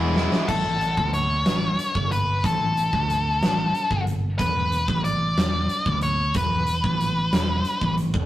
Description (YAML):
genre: indie rock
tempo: 61 BPM (dotted quarters)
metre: 6/8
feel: straight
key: A major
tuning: A4 = 439 Hz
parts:
  - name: brassy analog pad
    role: sustained chords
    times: 0.0-0.5 s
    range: none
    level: barely audible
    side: none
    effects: none
  - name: biting overdriven guitar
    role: riff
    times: 0.0-0.5 s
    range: E2 to E4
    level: -26 LUFS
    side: left 3 dB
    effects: none
  - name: cranked stack guitar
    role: riff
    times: 0.0-0.5 s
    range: E3 to E4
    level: -29 LUFS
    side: right 2 dB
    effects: overdrive
  - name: picked electric bass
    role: bass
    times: 0.0-8.3 s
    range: E1 to D2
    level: -25 LUFS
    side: equal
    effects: none
  - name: big rock drum kit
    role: drums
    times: 0.2-8.3 s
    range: crash cymbal, hi-hat, kick drum, snare drum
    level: -26 LUFS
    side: equal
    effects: none
  - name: octave-fuzz lead guitar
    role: melody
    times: 0.5-7.9 s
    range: A4 to D5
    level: -24 LUFS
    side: left 1 dB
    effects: distortion
room: light reverb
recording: rough rehearsal-room recording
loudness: -20 LUFS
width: side -14 dB against mid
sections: 0.5-8.3 A section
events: drum fill 0.2-0.5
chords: 0.5 A; 4.4 E5